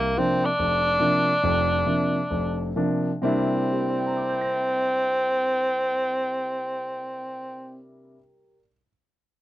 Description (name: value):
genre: jazz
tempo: 125-146 BPM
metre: 4/4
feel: swing 66% on 8ths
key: C mixolydian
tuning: A4 = 440 Hz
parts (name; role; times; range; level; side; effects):
- clear tenor saxophone; melody; 0.0-7.8 s; Bb3 to D4; -24 LUFS; equal; none
- warm grand piano; accompaniment; 0.0-8.9 s; F1 to Bb6; -26 LUFS; equal; none
room: little or no reverb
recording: dry, close 1970s-style studio recording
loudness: -22 LUFS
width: side -15 dB against mid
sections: 0.0-3.2 A section; 3.2-7.1 B section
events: slowing down 0.0-3.2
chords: 0.0 Bb; 3.2 C9